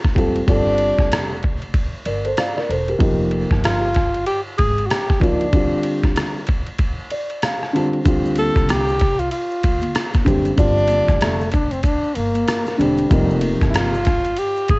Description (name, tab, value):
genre	hip hop, jazz-hop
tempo	95 BPM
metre	4/4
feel	swing 61% on 16ths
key	D minor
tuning	A4 = 441 Hz
part	breathy tenor saxophone	melody	0.0-14.8 s	D4 to A4	-21 LUFS	equal	cassette tape
part	trip hop sampler-style drum kit	drums	0.0-14.8 s	hi-hat, kick drum, ride cymbal, rim click	-20 LUFS	equal	cassette tape
part	dark upright piano	accompaniment	0.1-13.9 s	C3 to A5	-20 LUFS	equal	none
part	upright bass	bass	0.2-14.8 s	E1 to D2	-25 LUFS	equal	none
part	maracas and congas	percussion	8.1-14.8 s	none	-31 LUFS	left 1 dB	none
part	warm trombone	second line	11.2-13.5 s	G3 to D4	-22 LUFS	left 1 dB	none
room	light reverb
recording	home recording on cassette, nothing above 8.0 kHz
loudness	-16 LUFS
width	side -25 dB against mid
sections	0.0-8.1 A section; 8.1-14.8 A section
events	break 5.5-8.1; upright piano fill 6.8-8.1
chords	0.5 G9sus4; 3.0 F9sus4; 5.5 Dm7; 10.6 Gm7; 13.1 F9sus4